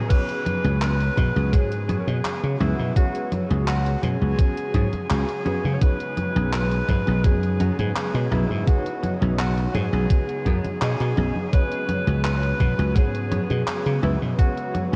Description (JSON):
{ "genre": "vaporwave", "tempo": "84 BPM", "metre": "4/4", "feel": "straight", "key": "unclear", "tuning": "A4 = 438 Hz", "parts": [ { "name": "breathy alto saxophone", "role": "melody", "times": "0.0-14.8 s", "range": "E4 to C#5", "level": "-31 LUFS", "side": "equal", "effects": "tape echo" }, { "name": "mellow FM electric piano", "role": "accompaniment", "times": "0.0-15.0 s", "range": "B3 to D#5", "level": "-35 LUFS", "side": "equal", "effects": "ensemble chorus, diffuse ambient delay" }, { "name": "soft string machine", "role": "sustained chords", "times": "0.0-15.0 s", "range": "C#3 to D#5", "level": "-37 LUFS", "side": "equal", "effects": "none" }, { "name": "semi-hollow electric guitar", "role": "riff", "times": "0.0-15.0 s", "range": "B3 to B4", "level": "-39 LUFS", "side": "equal", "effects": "none" }, { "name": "electronic kick drum", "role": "drums", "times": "0.1-14.5 s", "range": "none", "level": "-21 LUFS", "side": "equal", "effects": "studio reverb" }, { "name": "gated 80s digital drum machine", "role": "drums", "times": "0.1-15.0 s", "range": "congas, crash cymbal, handclaps, hi-hat", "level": "-30 LUFS", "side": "equal", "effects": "gated reverb, studio reverb" }, { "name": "dry thumbed slap bass", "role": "bass", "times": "0.6-15.0 s", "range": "B1 to C#3", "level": "-25 LUFS", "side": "equal", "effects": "none" } ], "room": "moderate huge ambient reverb, RT60 7.8 s", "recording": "dreamy mix soaked in reverb, cassette tape", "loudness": "-22 LUFS", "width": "mono", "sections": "0.1-15.0 A section", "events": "none", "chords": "0.1 C#7sus4; 5.8 B69; 11.5 C#7sus4" }